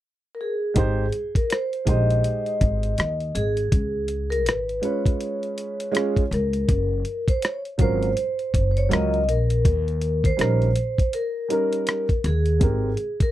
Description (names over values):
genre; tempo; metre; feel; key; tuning
hip hop, jazz-hop; 81 BPM; 4/4; swing 60% on 16ths; Ab major; A4 = 440 Hz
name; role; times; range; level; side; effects
vibraphone with soft mallets; melody; 0.3-13.3 s; Ab4 to Eb5; -26 LUFS; equal; none
dark baby grand piano; accompaniment; 0.7-12.9 s; Gb3 to C5; -26 LUFS; right 3 dB; none
upright bass; bass; 0.8-12.9 s; Gb1 to Eb2; -23 LUFS; equal; none
dusty soul sampler-style drum kit; drums; 0.8-13.3 s; hi-hat, kick drum, rim click; -22 LUFS; equal; none
room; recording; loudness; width
little or no reverb; dry, close 1970s-style studio recording; -20 LUFS; side -14 dB against mid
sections
0.8-13.3 A section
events
none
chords
0.0 N.C.; 0.8 Abmaj7; 3.7 Db7; 6.7 Gbmaj7; 9.6 Eb7; 12.6 Abmaj9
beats
0.02 | 0.76 1.50 2.24 2.98 | 3.72 4.46 5.20 5.95 | 6.68 7.43 8.17 8.91 | 9.65 10.39 11.13 11.87 | 12.61